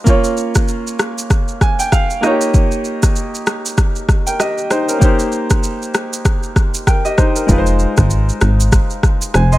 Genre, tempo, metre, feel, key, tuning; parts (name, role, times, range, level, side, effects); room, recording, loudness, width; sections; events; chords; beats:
afrobeats; 97 BPM; 4/4; swing 58% on 16ths; F minor; A4 = 438 Hz
clear concert grand piano; accompaniment; 0.0-9.6 s; Ab3 to C6; -18 LUFS; equal
afro-pop drum kit; drums; 0.1-9.6 s; kick drum, rim click, shaker; -14 LUFS; equal
plucky analog bass; bass; 7.5-9.6 s; F1 to Ab1; -13 LUFS; equal
little or no reverb; -13 LUFS; side -16 dB against mid
0.0-7.5 A section; 7.5-9.6 B section
grand piano fill 1.3-2.5
0.1 Bbm; 2.2 Eb7; 5.0 Cm7; 7.5 Fm7
| 0.07 0.68 1.30 1.92 | 2.54 3.16 3.78 4.39 | 5.01 5.63 6.25 6.87 | 7.49 8.11 8.72 9.34